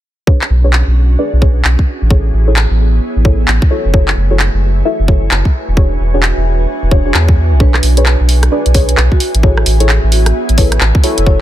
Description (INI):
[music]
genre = UK garage, two-step garage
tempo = 131 BPM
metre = 4/4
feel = swing 62% on 16ths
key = B dorian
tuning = A4 = 437 Hz
[part]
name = ethereal airy pad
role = sustained chords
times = 0.6-11.4 s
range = A3 to C#5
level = -24 LUFS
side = right 3 dB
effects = ensemble chorus, built-in reverb, sidechain pumping
[part]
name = deep mellow chord stab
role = stabs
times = 0.3-11.4 s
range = D4 to E5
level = -19 LUFS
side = left 2 dB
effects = chorus, ping-pong delay
[part]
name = electronic kick drum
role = drums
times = 0.3-11.4 s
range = none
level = -10 LUFS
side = equal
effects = none
[part]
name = deep dark ambient pad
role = texture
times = 1.8-11.4 s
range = F#4 to G#5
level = -25 LUFS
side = equal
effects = chorus, built-in reverb, sidechain pumping
[part]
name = garage drum kit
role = drums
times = 0.4-11.2 s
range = handclaps, hi-hat, rim click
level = -17 LUFS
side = equal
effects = none
[part]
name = saturated sub bass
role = bass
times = 0.5-11.4 s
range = E1 to E2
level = -11 LUFS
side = equal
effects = none
[part]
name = vibraphone with soft mallets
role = melody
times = 7.6-11.4 s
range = F#4 to C#5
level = -24 LUFS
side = equal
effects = ping-pong delay
[sound]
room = digital ambience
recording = dense, heavily limited modern master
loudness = -9 LUFS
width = side -13 dB against mid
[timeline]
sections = 0.3-11.4 A section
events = filter sweep on synth stab 0.3-11.4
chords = 0.3 Bm69; 1.9 Amaj7; 3.7 F#m7; 5.5 E13; 7.6 Bm69; 9.2 Amaj7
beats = | 0.27 0.73 1.19 1.65 | 2.10 2.56 3.02 3.48 | 3.94 4.39 4.85 5.31 | 5.77 6.23 6.68 7.14 | 7.60 8.06 8.52 8.97 | 9.43 9.89 10.35 10.81 | 11.27